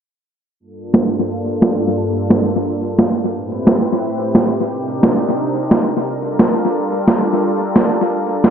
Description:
liquid drum and bass; 176 BPM; 4/4; straight; G minor; A4 = 442 Hz
lush unison pad; sustained chords; 0.6-8.5 s; G2 to B4; -19 LUFS; equal; chorus
electronic snare drum; drums; 0.9-8.5 s; -15 LUFS; equal; tape echo
moderate plate reverb, RT60 1.7 s, digital ambience; echo-heavy mix, low-pass filter; -14 LUFS; side -8 dB against mid
0.6-8.5 A section
filter sweep 0.6-8.5
0.6 Gm9; 3.3 Am9; 4.7 Cm9; 6.1 Gm9

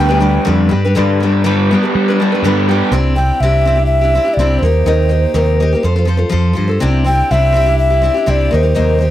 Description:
folk rock and heartland rock; 123 BPM; 4/4; straight; C major; A4 = 440 Hz
alto ocarina; melody; 0.0-9.1 s; C5 to G5; -16 LUFS; equal
picked steel-string acoustic guitar; accompaniment; 0.0-9.1 s; G2 to C5; -16 LUFS; left 3 dB
raw garage guitar; riff; 0.0-2.9 s; G2 to G4; -18 LUFS; right 2 dB; overdrive
picked electric bass; bass; 0.0-9.1 s; C2 to G3; -14 LUFS; right 1 dB
small room ambience; -11 LUFS; side -13 dB against mid
1.0-2.9 A section; 2.9-9.1 B section
0.0 G; 2.9 Cadd9; 4.6 Eb6; 5.8 F; 6.8 Cadd9; 8.5 Eb6

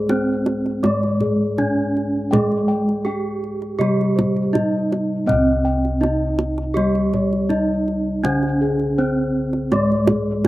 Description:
Javanese gamelan; 81 BPM; 4/4; straight; C pelog; A4 = 441 Hz
gamelan-type bronze metallophone; melody; 0.0-10.5 s; Ab3 to G4; -22 LUFS; right 2 dB
gamelan-type bronze metallophone; accompaniment; 0.0-10.5 s; C3 to Ab3; -23 LUFS; equal
gamelan-type bossed gongs; arpeggios; 0.0-10.5 s; Ab4 to G5; -25 LUFS; left 3 dB
gamelan-type bossed gongs; bass; 0.0-10.5 s; C2 to Ab4; -26 LUFS; equal
kendang; percussion; 0.1-10.5 s; -24 LUFS; right 2 dB
light reverb; recorded outdoors, with no room sound; -17 LUFS; side -16 dB against mid
0.0-10.5 A section

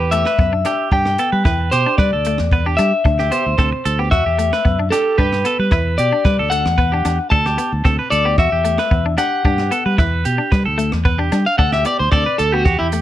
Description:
highlife guitar band; 112 BPM; 4/4; straight; G major; A4 = 440 Hz
electric guitar at the edge of break-up; melody; 0.0-12.9 s; E4 to A5; -18 LUFS; left 2 dB
clean electric guitar; arpeggios; 0.0-13.0 s; F#4 to B4; -22 LUFS; right 5 dB
fingered electric bass; bass; 0.0-13.0 s; D2 to G3; -19 LUFS; equal
clean electric guitar; accompaniment; 0.1-13.0 s; A3 to E4; -26 LUFS; left 6 dB
compact cocktail drum kit; drums; 0.1-13.0 s; hi-hat, kick drum, rim click; -19 LUFS; equal
light reverb; -14 LUFS; side -13 dB against mid
0.0-13.0 A section
clean electric guitar solo 0.0-13.0
0.0 Em; 0.9 G; 3.0 D5; 4.1 Em; 5.2 G; 7.3 D5; 8.4 Em; 9.5 G; 11.6 D5

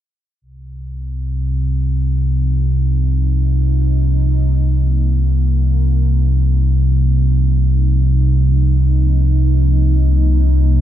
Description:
dark ambient drone; free time; A4 = 440 Hz
sweeping resonant pad; sustained chords; 0.4-10.8 s; C3 to Eb4; -26 LUFS; right 4 dB; lush chorus
deep rumbling drone; drone; 0.7-10.8 s; C2 to C3; -13 LUFS; equal; built-in reverb
moderate cathedral reverb, RT60 6.6 s; dark, warm production; -12 LUFS; side -11 dB against mid
0.4-10.8 A section
fade-in on analog synth pad 0.4-10.8
0.4 Bbsus24/C

